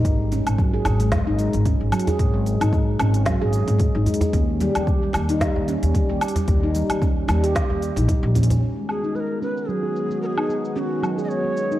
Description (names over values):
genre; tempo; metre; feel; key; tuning
organic downtempo; 112 BPM; 4/4; swing 55% on 16ths; G# minor; A4 = 440 Hz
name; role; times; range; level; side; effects
handpan; arpeggios; 0.0-11.8 s; F#3 to G#4; -24 LUFS; equal; low-pass filter, ping-pong delay
upright bass; bass; 0.0-8.6 s; G#1 to D#2; -22 LUFS; equal; sidechain pumping
electronic kick drum; drums; 0.0-8.2 s; none; -22 LUFS; equal; none
quartz singing bowl; texture; 0.0-8.6 s; none; barely audible; none; none
organic electronic drum kit; drums; 0.1-11.8 s; hi-hat, shaker, snare drum, woodblock; -29 LUFS; equal; low-pass filter on hats, low-pass filter on perc, low-pass filter on snare, low-pass filter on room
djembe; percussion; 0.3-8.6 s; none; -28 LUFS; right 1 dB; none
warm analog pad; sustained chords; 8.6-11.8 s; D#3 to F#4; -30 LUFS; equal; chorus, sidechain pumping
mellow Native American-style cedar flute; melody; 8.9-11.8 s; F#4 to D#5; -26 LUFS; equal; digital delay
room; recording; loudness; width
moderate echo chamber reverb, RT60 2.2 s; worn, warbling old tape, cassette tape, warbly pitch drift; -19 LUFS; side -14 dB against mid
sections
0.0-8.6 A section; 8.6-11.8 B section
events
filter sweep on drum 8.6-11.8; filter sweep on handpan 8.6-11.8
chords
0.1 G#5; 4.3 D#7; 8.6 G#m7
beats
| 0.05 0.59 1.12 1.66 | 2.19 2.73 3.27 3.80 | 4.34 4.87 5.41 5.94 | 6.48 7.01 7.55 8.09 | 8.62 9.16 9.69 10.23 | 10.77 11.30